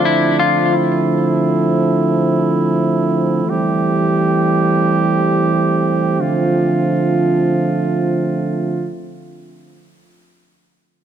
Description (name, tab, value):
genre	dream pop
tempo	free time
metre	none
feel	none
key	D minor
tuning	A4 = 439 Hz
part	mellow brass ensemble	sustained chords	0.0-8.9 s	D3 to G4	-14 LUFS	right 2 dB	none
part	clean electric guitar	arpeggios	0.0-0.7 s	E4 to F4	-18 LUFS	left 5 dB	wide subtle chorus, ping-pong delay
room	wet plate reverb, RT60 2.5 s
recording	dark, warm production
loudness	-14 LUFS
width	side -9 dB against mid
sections	0.0-8.9 A section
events	none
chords	0.0 Dm7; 3.5 Am7; 6.2 Dm7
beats	free time